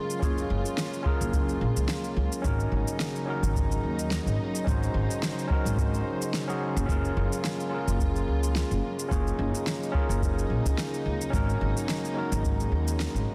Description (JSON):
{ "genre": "sunset chillout", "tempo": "108 BPM", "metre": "4/4", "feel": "swing 55% on 16ths", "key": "Gb lydian", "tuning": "A4 = 440 Hz", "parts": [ { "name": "overdriven tine electric piano", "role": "accompaniment", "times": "0.0-13.3 s", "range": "Db4 to Db5", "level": "-35 LUFS", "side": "equal", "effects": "digital delay" }, { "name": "dark studio string section", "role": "sustained chords", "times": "0.0-13.3 s", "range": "Db3 to C5", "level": "-37 LUFS", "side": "equal", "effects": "none" }, { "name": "electronic shaker and snare drum", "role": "drums", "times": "0.1-13.3 s", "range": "none", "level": "-37 LUFS", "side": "equal", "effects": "overdrive" }, { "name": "upright bass", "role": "bass", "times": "0.2-13.2 s", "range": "Gb1 to Eb2", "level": "-30 LUFS", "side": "equal", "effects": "none" }, { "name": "electronic kick drum", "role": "drums", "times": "0.2-12.6 s", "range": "none", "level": "-31 LUFS", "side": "equal", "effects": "none" } ], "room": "light reverb", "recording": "dense, heavily limited modern master", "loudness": "-28 LUFS", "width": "mono", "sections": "0.0-13.3 A section", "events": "none", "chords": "0.0 Gbmaj9; 2.4 Ab9sus4; 6.9 Gbmaj9; 11.3 Ab9sus4" }